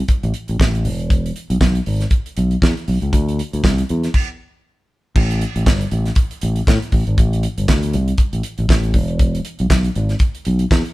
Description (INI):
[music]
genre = disco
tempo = 119 BPM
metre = 4/4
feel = swing 56% on 16ths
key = unclear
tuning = A4 = 441 Hz
[part]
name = damped 70s drum kit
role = drums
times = 0.1-10.9 s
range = crash cymbal, handclaps, hi-hat, kick drum, snare drum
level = -17 LUFS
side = equal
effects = none
[part]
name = fingered electric bass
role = bass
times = 0.2-10.8 s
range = E1 to A2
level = -18 LUFS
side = equal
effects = none
[sound]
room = light reverb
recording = band playing live in one room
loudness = -15 LUFS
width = side -18 dB against mid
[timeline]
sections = 0.0-5.2 A section; 5.2-10.9 B section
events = stop 4.1-5.2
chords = none